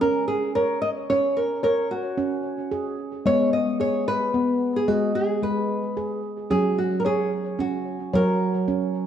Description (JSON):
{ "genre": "world meditative, meditative tuned percussion", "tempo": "111 BPM", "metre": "3/4", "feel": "swing 55% on 16ths", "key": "unclear", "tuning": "A4 = 440 Hz", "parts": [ { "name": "nylon-string guitar", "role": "melody", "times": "0.0-9.1 s", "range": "F#4 to D#5", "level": "-24 LUFS", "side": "right 1 dB", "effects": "none" }, { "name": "handpan", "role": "arpeggios", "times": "0.0-9.1 s", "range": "F#3 to C#5", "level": "-24 LUFS", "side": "equal", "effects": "diffuse ambient delay" } ], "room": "wet echo chamber reverb, RT60 1.9 s, small room ambience", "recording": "worn, warbling old tape, cassette tape, warbly pitch drift", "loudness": "-21 LUFS", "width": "side -9 dB against mid", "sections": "0.0-9.1 A section", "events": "none", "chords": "0.0 F#5; 3.3 G#m; 6.5 F#" }